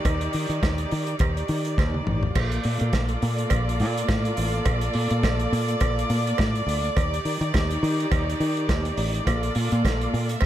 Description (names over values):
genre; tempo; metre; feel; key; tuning
disco; 104 BPM; 4/4; swing 56% on 16ths; Bb major; A4 = 440 Hz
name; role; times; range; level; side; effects
clear studio string section; sustained chords; 0.0-10.5 s; Eb3 to Fb5; -27 LUFS; equal; none
fingered electric bass; bass; 0.1-10.5 s; Gb1 to Eb3; -25 LUFS; equal; none
warm soul drum kit; drums; 0.1-10.5 s; crash cymbal, hi-hat, kick drum, snare drum, toms; -27 LUFS; equal; none
cowbell; percussion; 0.1-10.5 s; none; -33 LUFS; right 7 dB; none
room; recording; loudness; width
little or no reverb; none; -22 LUFS; side -12 dB against mid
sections
0.0-10.5 A section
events
drum fill 1.8-2.4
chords
0.0 Ebmaj7; 2.4 Bbmaj7; 7.0 Ebmaj7; 9.3 Bbmaj7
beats
| 0.06 0.63 1.21 1.78 | 2.36 2.94 3.51 4.09 | 4.67 5.24 5.82 6.39 | 6.97 7.54 8.12 8.70 | 9.27 9.85 10.42